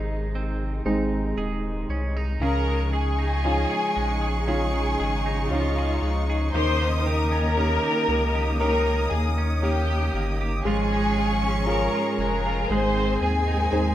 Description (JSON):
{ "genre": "pop ballad", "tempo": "58 BPM", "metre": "4/4", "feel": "straight", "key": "Db major", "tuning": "A4 = 440 Hz", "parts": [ { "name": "clear concert grand piano", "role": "accompaniment", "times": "0.0-13.9 s", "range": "Db3 to C5", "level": "-29 LUFS", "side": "equal", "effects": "none" }, { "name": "dark studio string section", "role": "sustained chords", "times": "0.0-13.9 s", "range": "C3 to Ab4", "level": "-30 LUFS", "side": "left 1 dB", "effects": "none" }, { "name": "twelve-string electric guitar", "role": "arpeggios", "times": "0.0-13.9 s", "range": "Ab2 to Ab4", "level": "-32 LUFS", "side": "right 6 dB", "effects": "spring reverb, ping-pong delay" }, { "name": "warm sub bass", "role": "bass", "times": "0.0-13.9 s", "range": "Eb1 to Eb2", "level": "-26 LUFS", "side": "equal", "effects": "none" }, { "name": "warm studio violin section", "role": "melody", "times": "2.4-13.9 s", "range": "F4 to C6", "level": "-27 LUFS", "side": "left 1 dB", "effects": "none" }, { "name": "bright studio violin section", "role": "second line", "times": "2.4-13.9 s", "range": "Ab5 to Eb6", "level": "-35 LUFS", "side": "left 1 dB", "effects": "none" } ], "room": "small room ambience", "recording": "rough home demo mix", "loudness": "-21 LUFS", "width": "side -12 dB against mid", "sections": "0.0-2.4 A section; 2.4-13.9 B section", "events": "grand piano solo 0.0-2.4", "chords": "0.0 Ab; 2.4 Dbadd9; 6.6 Eb7; 10.7 Db/Ab; 12.7 Ab" }